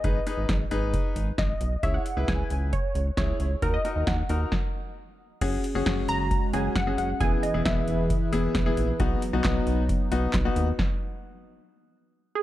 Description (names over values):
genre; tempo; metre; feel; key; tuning
synth-pop; 134 BPM; 4/4; straight; unclear; A4 = 438 Hz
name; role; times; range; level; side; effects
funky polysynth comp; melody; 0.0-8.3, 12.4 s; G#4 to A#5; -31 LUFS; right 1 dB; chorus, analog delay
bright grand piano; accompaniment; 0.0-10.7 s; B3 to C#5; -30 LUFS; left 3 dB; none
rubbery square bass; bass; 0.0-10.7 s; E1 to D#2; -28 LUFS; equal; none
electro analog drum machine; drums; 0.0-10.9 s; crash cymbal, handclaps, hi-hat, kick drum, snare drum; -28 LUFS; equal; none
chorused pulse-width pad; sustained chords; 5.4-10.8 s; E3 to B4; -32 LUFS; equal; none
room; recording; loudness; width
light reverb; dark, warm production; -23 LUFS; side -14 dB against mid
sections
0.0-5.4 A section; 5.4-12.4 B section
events
stop 4.5-5.4, 10.8-12.4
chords
0.0 G#m; 1.8 C#m7; 3.6 D#m; 5.4 F#sus2; 7.2 E; 9.0 B; 10.8 N.C.